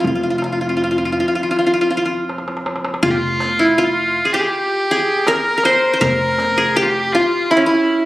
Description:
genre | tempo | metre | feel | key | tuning
Arabic maqam ensemble | 80 BPM | 4/4 | straight | F maqam nahawand | A4 = 440 Hz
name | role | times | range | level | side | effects
qanun | melody | 0.0-8.1 s | Db4 to C5 | -16 LUFS | equal | slapback echo
upright bass | bass | 0.0-7.2 s | F1 | -25 LUFS | equal | none
warm cello | drone | 0.0-3.1 s | F2 | -28 LUFS | right 1 dB | none
darbuka | percussion | 0.0-7.6 s | none | -27 LUFS | equal | none
rich violin | second line | 3.0-8.1 s | E4 to Bb4 | -18 LUFS | equal | none
riq | percussion | 3.0-6.9 s | none | -30 LUFS | right 2 dB | none
room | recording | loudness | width
light reverb | recorded on a phone in the room, club reverb | -14 LUFS | side -16 dB against mid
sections
0.0-3.0 A section; 3.0-8.1 B section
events
drum fill 2.3-3.0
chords
none

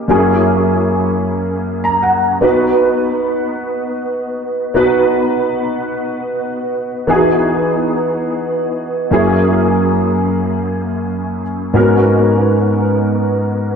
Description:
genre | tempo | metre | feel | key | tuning
R&B | free time | none | none | unclear | A4 = 441 Hz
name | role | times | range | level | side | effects
dark concert grand piano | solo | 0.0-13.8 s | F#2 to A#5 | -13 LUFS | equal | ensemble chorus, diffuse ambient delay
room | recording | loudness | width
wet plate reverb, RT60 2.7 s | dreamy mix soaked in reverb | -13 LUFS | side -6 dB against mid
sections
0.0-2.4 A section; 2.4-11.7 B section; 11.7-13.8 C section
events
grand piano fill 1.6-2.4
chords
0.1 F#7; 2.4 B; 7.1 Emaj7; 9.1 F#7; 11.7 G#m11

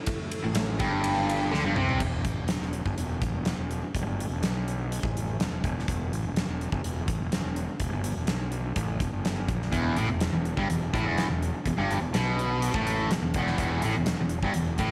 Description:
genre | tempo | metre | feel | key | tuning
classic rock | 124 BPM | 4/4 | straight | unclear | A4 = 440 Hz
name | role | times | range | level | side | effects
string machine, cellos | sustained chords | 0.0-2.0 s | E4 to E5 | -44 LUFS | equal | none
huge arena drum kit | drums | 0.1-14.9 s | crash cymbal, hi-hat, kick drum, ride cymbal, snare drum, toms | -33 LUFS | equal | none
distorted electric guitar | riff | 0.4-2.0, 9.7-14.9 s | E2 to D3 | -30 LUFS | equal | overdrive
fuzz fingered electric bass | bass | 0.4-14.9 s | E1 to D2 | -33 LUFS | equal | overdrive
room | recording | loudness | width
light reverb, studio reverb | none | -28 LUFS | mono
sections
0.0-2.0 A section; 2.0-14.9 B section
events
drum fill 1.5-2.0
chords
0.0 A5; 2.0 E5

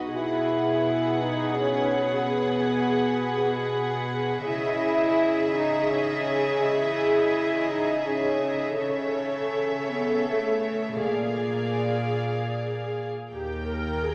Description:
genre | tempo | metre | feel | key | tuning
cinematic | 52-57 BPM (dotted quarters) | 6/8 | rubato | unclear | A4 = 440 Hz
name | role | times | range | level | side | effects
clear studio violin section | melody | 0.0-14.1 s | D#5 to G5 | -36 LUFS | equal | none
warm studio violin section | second line | 0.0-14.1 s | Bb4 to D#5 | -37 LUFS | equal | none
warm studio viola section | accompaniment | 0.0-14.1 s | F#4 to Bb4 | -30 LUFS | equal | none
mellow French horn section | sustained chords | 0.0-12.9 s | A3 to G#4 | -30 LUFS | equal | none
warm studio cello section | bass | 0.0-14.1 s | Eb2 to C#3 | -35 LUFS | equal | none
dark studio double bass section | bass | 13.3-14.1 s | Eb2 | -35 LUFS | equal | none
room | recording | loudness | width
wet concert hall reverb, RT60 2.1 s | none | -26 LUFS | mono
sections
0.0-13.3 A section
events
none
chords
0.1 Eadd9/B; 4.5 C#madd9; 8.8 A/C#; 11.0 A#7; 13.3 Eb

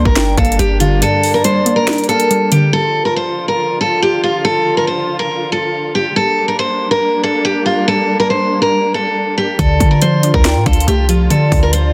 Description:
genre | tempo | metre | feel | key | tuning
hip hop, trap | 140 BPM | 4/4 | half-time | D minor | A4 = 442 Hz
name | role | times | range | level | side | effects
picked steel-string acoustic guitar | melody | 0.0-11.9 s | F4 to C5 | -17 LUFS | equal | low-pass filter, delay
hollow clarinet-like synth lead | second line | 0.0-2.7, 9.6-11.9 s | Bb4 to G5 | -24 LUFS | equal | chorus, delay
warbly dusty pluck | accompaniment | 0.0-2.7, 9.6-11.9 s | G2 to D5 | -20 LUFS | equal | chorus, low-pass filter
muted chamber string section | sustained chords | 0.0-11.9 s | D3 to F4 | -24 LUFS | equal | none
clean 808-style bass | bass | 0.0-1.0, 9.6-11.9 s | G1 to D3 | -17 LUFS | equal | none
trap drum kit | drums | 0.1-2.6, 9.6-11.8 s | finger snaps, hi-hat, kick drum, snare drum | -18 LUFS | equal | overdrive
room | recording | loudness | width
light reverb, digital ambience | dense, heavily limited modern master | -14 LUFS | mono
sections
0.0-2.7 A section; 2.7-11.9 A section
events
kick muted 1.0-2.7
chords
0.0 Gm; 2.7 Dm; 6.2 Gm; 9.6 Dm

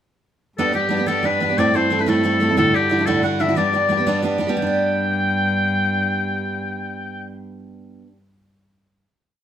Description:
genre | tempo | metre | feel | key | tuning
celtic folk, Celtic jig | 121 BPM (dotted quarters) | 6/8 | straight | G major | A4 = 440 Hz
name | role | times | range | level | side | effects
clear oboe | melody | 0.6-7.3 s | G4 to G5 | -20 LUFS | left 3 dB | none
picked steel-string acoustic guitar | accompaniment | 0.6-8.2 s | D2 to A4 | -21 LUFS | right 2 dB | none
rich cello | drone | 0.6-7.3 s | G2 | -27 LUFS | equal | none
room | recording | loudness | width
wet studio reverb, RT60 0.8 s | none | -17 LUFS | side -9 dB against mid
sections
0.6-4.6 A section; 4.6-6.5 final chord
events
none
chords
0.6 G; 1.6 Am; 2.6 Dadd9; 3.6 G

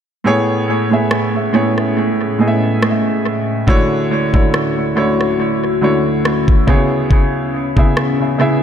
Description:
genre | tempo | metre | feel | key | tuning
contemporary R&B | 70 BPM | 4/4 | swing 54% on 16ths | A major | A4 = 440 Hz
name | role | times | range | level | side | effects
warm grand piano | accompaniment | 0.2-8.6 s | A2 to E5 | -14 LUFS | right 1 dB | tape echo
deep dark ambient pad | sustained chords | 1.2-8.6 s | D2 to G#4 | -22 LUFS | left 5 dB | chorus, built-in reverb
smooth R&B drum kit | drums | 1.1-8.2 s | kick drum, rim click | -17 LUFS | equal | tape echo
room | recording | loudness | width
light reverb | echo-heavy mix | -13 LUFS | side -8 dB against mid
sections
0.2-8.6 A section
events
none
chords
0.2 Amaj7; 3.7 Dmaj7; 6.7 C#m7

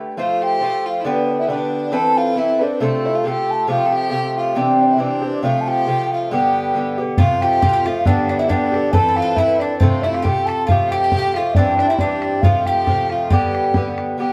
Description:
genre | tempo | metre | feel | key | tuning
celtic folk, Celtic polka | 137 BPM | 2/4 | swing 54% on 8ths | unclear | A4 = 438 Hz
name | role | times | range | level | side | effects
Irish bouzouki | accompaniment | 0.0-14.3 s | G2 to C5 | -22 LUFS | equal | none
mellow hollow baroque flute | melody | 0.2-14.3 s | C5 to A5 | -22 LUFS | equal | none
clear fiddle | second line | 0.2-14.3 s | C4 to A4 | -30 LUFS | equal | none
bowl-back mandolin | second line | 7.2-13.9 s | C4 to A4 | -31 LUFS | equal | none
bodhran | percussion | 7.2-14.1 s | none | -21 LUFS | equal | none
room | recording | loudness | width
wet stone room reverb, RT60 1.1 s | band playing live in one room | -18 LUFS | mono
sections
0.2-7.2 A section; 7.2-14.2 A section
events
none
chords
0.2 F; 1.1 G; 1.9 Amadd9; 2.8 F; 3.7 Fadd9; 4.6 C; 5.4 F; 6.3 G; 7.2 F; 8.1 G; 8.9 Amadd9; 9.8 F; 10.7 Fadd9; 11.6 C; 12.4 F; 13.3 G

